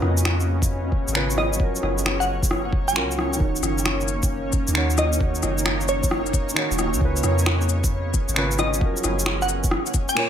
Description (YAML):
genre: future garage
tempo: 133 BPM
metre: 4/4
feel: swing 67% on 16ths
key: Eb minor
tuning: A4 = 437 Hz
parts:
  - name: felt-muted upright piano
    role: accompaniment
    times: 0.0-10.3 s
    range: Bb2 to Db5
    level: -29 LUFS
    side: right 2 dB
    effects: sidechain pumping, digital delay
  - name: granular cloud pad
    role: sustained chords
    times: 0.0-10.3 s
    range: Bb3 to Db5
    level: -29 LUFS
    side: equal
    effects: built-in reverb, sidechain pumping
  - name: soft 808-style bass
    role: bass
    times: 0.0-9.7 s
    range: Eb1 to F2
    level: -25 LUFS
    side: equal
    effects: sidechain pumping
  - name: electronic rim click, shaker, finger snaps and cabasa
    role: drums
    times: 0.0-10.3 s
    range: none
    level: -25 LUFS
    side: left 1 dB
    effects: overdrive
  - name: electronic kick drum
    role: drums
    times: 0.6-10.1 s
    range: none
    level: -23 LUFS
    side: equal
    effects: overdrive
  - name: glassy wavetable pluck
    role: melody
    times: 1.4-10.3 s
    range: Db5 to Ab5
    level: -27 LUFS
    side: equal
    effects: chorus, tape echo
room: light reverb, digital ambience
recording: none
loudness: -20 LUFS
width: side -9 dB against mid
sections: 0.0-10.3 A section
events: none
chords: 0.0 Db7; 1.6 Gbmaj7; 3.4 Ebm7; 7.0 Db7; 8.8 Gbmaj7; 9.7 Bbm